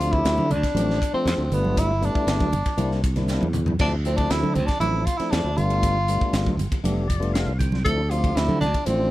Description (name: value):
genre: electric jazz fusion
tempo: 118 BPM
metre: 4/4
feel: straight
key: D dorian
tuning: A4 = 440 Hz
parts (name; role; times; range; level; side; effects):
- mellow tenor saxophone; melody; 0.0-9.1 s; B3 to A4; -25 LUFS; right 1 dB; none
- tonewheel organ; accompaniment; 0.0-9.1 s; F3 to G5; -28 LUFS; left 2 dB; slow rotary speaker
- modern bright fingered electric bass; bass; 0.0-9.1 s; F1 to D3; -24 LUFS; equal; none
- crisp fusion drum kit; drums; 0.0-9.0 s; crash cymbal, hi-hat, kick drum, ride cymbal, snare drum, toms; -27 LUFS; equal; none
- congas; percussion; 0.4-9.0 s; none; -29 LUFS; right 3 dB; none
room: little or no reverb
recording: none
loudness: -20 LUFS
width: side -16 dB against mid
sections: 0.0-3.8 A section; 3.8-9.1 A section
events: drum fill 3.3-3.8; tonewheel organ fill 6.8-7.9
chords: 0.0 Dm9; 1.5 G7; 2.8 C7; 3.8 Dm9; 5.6 G7; 7.9 Dm9